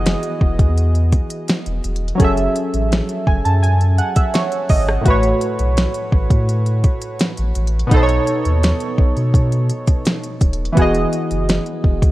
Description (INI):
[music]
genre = contemporary R&B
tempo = 84 BPM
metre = 4/4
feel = straight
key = E major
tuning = A4 = 440 Hz
[part]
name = warm analog keys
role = accompaniment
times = 0.0-12.1 s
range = A2 to A5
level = -20 LUFS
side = right 1 dB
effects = chorus
[part]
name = warm sub bass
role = bass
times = 0.0-12.1 s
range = D#1 to B2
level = -18 LUFS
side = equal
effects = none
[part]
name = smooth R&B drum kit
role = drums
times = 0.1-12.1 s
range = hi-hat, kick drum, rim click, snare drum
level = -16 LUFS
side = equal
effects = none
[sound]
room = little or no reverb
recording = worn, warbling old tape, cassette tape, warbly pitch drift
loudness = -14 LUFS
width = side -16 dB against mid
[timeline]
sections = 0.0-12.1 A section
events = synth keys fill 2.9-5.1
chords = 0.0 Emaj9; 2.2 F#m9; 5.1 A6; 7.9 B9; 10.8 Emaj9